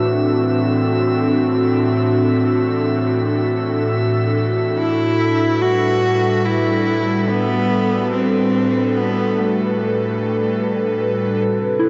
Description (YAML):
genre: ambient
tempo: free time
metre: none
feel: none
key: unclear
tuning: A4 = 441 Hz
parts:
  - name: airy breathy pad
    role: sustained chords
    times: 0.0-11.9 s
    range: A2 to B4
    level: -19 LUFS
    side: equal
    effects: chorus, cassette tape
  - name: drifting glass-harmonics texture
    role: texture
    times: 0.0-11.9 s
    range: E5 to F#6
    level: -33 LUFS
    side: equal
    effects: chorus, built-in reverb, cassette tape
  - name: rich cello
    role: melody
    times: 4.8-11.9 s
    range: A3 to F#4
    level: -22 LUFS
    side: equal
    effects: cassette tape, tape echo
  - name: soft synth bell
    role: arpeggios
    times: 11.8-11.9 s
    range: E4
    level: -18 LUFS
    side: equal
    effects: chorus, phaser, cassette tape
room: wet lush hall reverb, RT60 3.1 s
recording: home recording on cassette, nothing above 7.6 kHz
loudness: -18 LUFS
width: mono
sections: 0.0-11.5 A section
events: fade-out on synth texture 0.0-11.5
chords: 0.0 D9/A; 4.8 Gmaj9/A